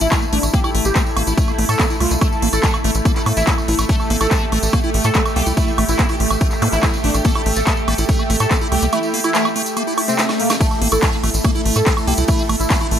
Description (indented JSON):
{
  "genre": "psychedelic trance",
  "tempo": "143 BPM",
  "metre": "4/4",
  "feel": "straight",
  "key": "unclear",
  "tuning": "A4 = 440 Hz",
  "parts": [
    { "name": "wide unison lead", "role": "melody", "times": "0.0-12.8 s", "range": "Bb3 to A4", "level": "-24 LUFS", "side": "equal", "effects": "phaser, sidechain pumping, dub echo" },
    { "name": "bubbling stepped-filter texture", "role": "sustained chords", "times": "0.0-13.0 s", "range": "A3 to G4", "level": "-26 LUFS", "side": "right 2 dB", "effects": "chorus, built-in reverb, sidechain pumping" },
    { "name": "liquid acid bass", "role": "riff", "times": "0.0-13.0 s", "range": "A3 to E4", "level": "-24 LUFS", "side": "moving between left 4 dB and right 6 dB", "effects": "phaser, auto-pan, sidechain pumping, dub echo" },
    { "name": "tight sequencer bass", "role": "bass", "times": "0.0-13.0 s", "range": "A1 to A2", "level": "-19 LUFS", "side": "equal", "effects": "none" },
    { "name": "techno drum kit", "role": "drums", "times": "0.0-13.0 s", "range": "handclaps, hi-hat, ride cymbal, snare drum, woodblock", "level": "-22 LUFS", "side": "right 1 dB", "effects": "overdrive, studio reverb" },
    { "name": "tambourine", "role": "percussion", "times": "0.0-12.9 s", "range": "none", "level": "-29 LUFS", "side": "right 1 dB", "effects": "none" },
    { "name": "airy breathy pad", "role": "texture", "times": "0.0-13.0 s", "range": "A4 to A5", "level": "-28 LUFS", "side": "equal", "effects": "chorus, sidechain pumping" },
    { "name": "electronic kick drum", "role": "drums", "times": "0.1-12.8 s", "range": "none", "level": "-18 LUFS", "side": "equal", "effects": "overdrive, studio reverb" },
    { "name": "zap and swell", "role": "sound effects", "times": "6.6-6.7, 10.0-10.6 s", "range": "none", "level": "-27 LUFS", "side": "left 2 dB", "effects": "none" }
  ],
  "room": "light reverb",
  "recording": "none",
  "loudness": "-14 LUFS",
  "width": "side -9 dB against mid",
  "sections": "0.0-13.0 A section",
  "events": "swell 10.0-10.6; drum fill 10.2-10.6",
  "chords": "0.0 A5",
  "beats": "0.12 | 0.54 0.96 1.38 1.79 | 2.21 2.63 3.05 3.47 | 3.89 4.31 4.73 5.15 | 5.57 5.99 6.41 6.83 | 7.25 7.67 8.09 8.51 | 8.93 9.35 9.77 10.19 | 10.61 11.03 11.45 11.87 | 12.28 12.70"
}